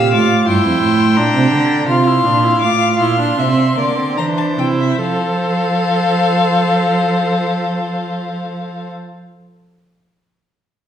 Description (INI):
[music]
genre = classical, baroque-style fugue for string quartet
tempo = 71-88 BPM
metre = 4/4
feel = straight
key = F major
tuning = A4 = 441 Hz
[part]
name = warm violin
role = melody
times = 0.0-8.9 s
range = E5 to E6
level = -19 LUFS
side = left 4 dB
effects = none
[part]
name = dark violin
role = second line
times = 0.0-8.9 s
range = C5 to G5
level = -22 LUFS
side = left 1 dB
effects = none
[part]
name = rich viola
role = accompaniment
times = 0.0-8.9 s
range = Bb3 to A4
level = -19 LUFS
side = right 2 dB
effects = none
[part]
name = warm cello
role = bass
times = 0.0-8.9 s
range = F2 to F3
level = -17 LUFS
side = right 3 dB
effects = none
[sound]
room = wet recital hall reverb, RT60 1.3 s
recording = heard from further back in the room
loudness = -13 LUFS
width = side -9 dB against mid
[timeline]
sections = 0.0-5.0 A section; 5.0-8.4 B section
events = slowing down 0.0-5.0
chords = 0.0 Dm; 1.9 C7sus4; 3.4 C7; 5.0 F